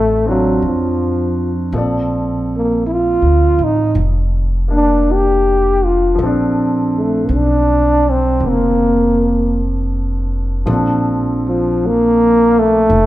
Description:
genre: jazz ballad.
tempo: 54 BPM.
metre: 4/4.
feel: swing 66% on 8ths.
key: Bb major.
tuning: A4 = 440 Hz.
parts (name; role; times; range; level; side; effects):
warm trombone; melody; 0.0-13.1 s; F3 to G4; -14 LUFS; equal; none.
warm baby grand piano; accompaniment; 0.0-13.1 s; F3 to D5; -20 LUFS; equal; none.
upright bass; bass; 0.0-13.1 s; F1 to F2; -18 LUFS; equal; none.
room: moderate recital hall reverb, RT60 1.5 s.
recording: recorded in a church or concert hall.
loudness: -12 LUFS.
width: side -15 dB against mid.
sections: 0.0-10.7 A section; 10.7-13.1 A section.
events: none.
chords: 0.0 F7b9; 1.7 Bbmaj7.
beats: 0.63 | 1.74 2.85 3.96 5.07 | 6.19 7.31 8.43 9.55 | 10.68 11.79 12.91.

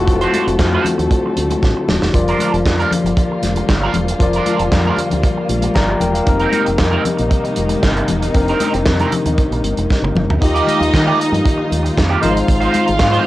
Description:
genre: disco.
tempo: 116 BPM.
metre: 4/4.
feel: straight.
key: unclear.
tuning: A4 = 440 Hz.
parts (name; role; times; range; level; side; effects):
overdriven tine electric piano; accompaniment; 0.0-13.3 s; Eb3 to Bb5; -20 LUFS; left 3 dB; cassette tape.
dark chamber string section; sustained chords; 0.0-13.3 s; C3 to A4; -23 LUFS; equal; cassette tape.
fingered electric bass with an envelope filter; bass; 0.0-13.2 s; Eb1 to Eb3; -20 LUFS; right 1 dB; none.
electric guitar at the edge of break-up; accompaniment; 0.1-13.3 s; C4 to D5; -22 LUFS; right 6 dB; wah, phaser, cassette tape.
warm soul drum kit; drums; 0.1-13.2 s; handclaps, hi-hat, kick drum, snare drum, toms; -18 LUFS; right 1 dB; cassette tape.
congas; percussion; 0.1-13.3 s; none; -25 LUFS; left 4 dB; none.
clear studio string section; second line; 10.4-13.3 s; Eb4 to F5; -19 LUFS; equal; cassette tape.
room: light reverb.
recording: home recording on cassette.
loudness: -13 LUFS.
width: side -16 dB against mid.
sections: 0.0-10.4 A section; 10.4-13.3 B section.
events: drum fill 1.6-2.1, 9.9-10.4.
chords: 0.0 D7; 2.1 Gm7; 6.3 Cm7; 10.4 Ebmaj9; 12.2 Ab6.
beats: | 0.07 0.58 1.10 1.62 | 2.14 2.65 3.17 3.69 | 4.21 4.72 5.24 5.76 | 6.28 6.79 7.31 7.83 | 8.35 8.86 9.38 9.90 | 10.41 10.93 11.45 11.97 | 12.48 13.00.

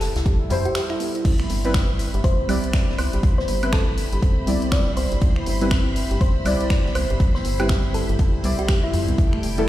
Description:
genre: deep house.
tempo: 121 BPM.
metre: 4/4.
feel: swing 60% on 16ths.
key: C major.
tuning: A4 = 440 Hz.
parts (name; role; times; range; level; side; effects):
thumb-piano-like synth pluck; melody; 0.0-9.0 s; E4 to D5; -29 LUFS; equal; chorus, vintage 12-bit sampler grit, dub echo.
warm analog pad; sustained chords; 0.0-9.7 s; G3 to B5; -31 LUFS; equal; chorus, sidechain pumping.
rubbery square bass; bass; 0.0-9.7 s; F1 to F2; -24 LUFS; equal; sidechain pumping.
deep house drum kit; drums; 0.0-9.7 s; crash cymbal, finger snaps, hi-hat, woodblock; -31 LUFS; equal; studio reverb.
swinging big-band drum kit; drums; 0.0-9.6 s; hi-hat, snare drum; -39 LUFS; left 1 dB; sidechain pumping on hats, high-pass filter on hats, studio reverb, high-pass filter on snare, high-pass filter on room.
soft round pluck; arpeggios; 0.2-9.7 s; A3 to E5; -34 LUFS; right 3 dB; wide subtle chorus, sidechain pumping, dub echo.
electronic kick drum; drums; 0.3-9.3 s; none; -20 LUFS; equal; studio reverb.
deep mellow chord stab; stabs; 0.5-9.7 s; B2 to D5; -27 LUFS; equal; chorus, cassette tape, sidechain pumping.
string machine, violins; texture; 1.2-9.7 s; G4 to B5; -36 LUFS; left 1 dB; ensemble chorus, sidechain pumping.
room: light reverb, digital ambience.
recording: played on a big sound system in a bare room, stone room reverb.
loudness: -18 LUFS.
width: side -14 dB against mid.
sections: 0.0-9.7 A section.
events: break 0.8-1.2.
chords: 0.0 Fmaj9#11; 1.2 Cmaj7; 8.9 Fmaj9#11.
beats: 0.26 0.75 | 1.25 1.75 2.24 2.74 | 3.23 3.73 4.22 4.72 | 5.22 5.71 6.21 6.70 | 7.20 7.70 8.19 8.69 | 9.18 9.68.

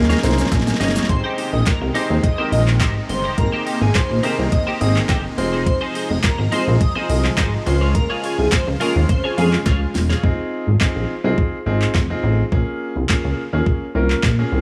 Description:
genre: dance-pop.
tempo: 105 BPM.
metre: 4/4.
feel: straight.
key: unclear.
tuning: A4 = 441 Hz.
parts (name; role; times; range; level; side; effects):
clear baby grand piano; accompaniment; 0.0-14.6 s; Ab3 to Bb5; -27 LUFS; equal; sidechain pumping.
supersaw chords; sustained chords; 0.0-10.2 s; C3 to F4; -30 LUFS; equal; sidechain pumping.
soft round pluck; arpeggios; 0.0-0.9 s; Db4 to Ab4; -33 LUFS; equal; none.
chorused synth bass; bass; 0.0-14.6 s; E1 to F2; -21 LUFS; equal; sidechain pumping.
smooth R&B drum kit; drums; 0.0-14.4 s; handclaps, hi-hat, kick drum, shaker, snare drum; -23 LUFS; equal; none.
twelve-string electric guitar; riff; 0.1-10.2 s; Eb4 to Db5; -28 LUFS; equal; analog chorus.
group handclap; percussion; 0.5-9.8 s; none; -36 LUFS; equal; none.
airy dreamy lead; melody; 1.1-9.5 s; Ab4 to Eb5; -28 LUFS; equal; chorus, phaser, sidechain pumping, dub echo.
room: little or no reverb.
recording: none.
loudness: -19 LUFS.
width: mono.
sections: 0.0-1.1 A section; 1.1-10.2 B section; 10.2-14.6 C section.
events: drum fill 0.0-1.1, 9.7-10.2; grand piano fill 0.0-1.1.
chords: 0.0 Eb7sus4; 1.1 Abmaj7; 5.4 Fm7; 7.7 Db; 10.2 Fm7; 12.5 Bbm7.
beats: 0.52 | 1.09 1.66 2.24 2.81 | 3.38 3.95 4.52 5.09 | 5.66 6.24 6.81 7.38 | 7.95 8.52 9.09 9.66 | 10.24 10.81 11.38 11.95 | 12.52 13.09 13.66 14.24.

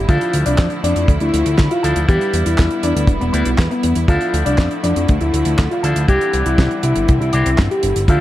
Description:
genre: italo disco.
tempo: 120 BPM.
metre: 4/4.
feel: straight.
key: D dorian.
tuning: A4 = 440 Hz.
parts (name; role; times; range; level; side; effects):
clear studio string section; sustained chords; 0.0-8.2 s; D3 to E4; -26 LUFS; right 2 dB; shimmer reverb.
fat analog bass; bass; 0.0-8.2 s; E1 to F2; -18 LUFS; equal; none.
dark baby grand piano; melody; 0.1-8.2 s; B3 to G4; -19 LUFS; left 1 dB; digital delay, shimmer reverb.
electric guitar with an envelope filter; stabs; 0.1-8.2 s; E3 to B4; -24 LUFS; left 2 dB; shimmer reverb.
damped 70s drum kit; drums; 0.1-8.2 s; handclaps, hi-hat, snare drum; -24 LUFS; right 1 dB; none.
kick drum; drums; 0.1-8.2 s; none; -14 LUFS; equal; none.
room: light reverb, small room ambience.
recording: dark, warm production, vinyl crackle.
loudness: -14 LUFS.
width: side -14 dB against mid.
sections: 0.0-8.2 A section.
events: none.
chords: 0.1 Dmadd9; 2.1 Em7; 4.1 Dmadd9; 6.1 Cadd9.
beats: | 0.08 0.58 1.08 1.58 | 2.08 2.58 3.08 3.58 | 4.08 4.58 5.08 5.58 | 6.08 6.58 7.08 7.58 | 8.08.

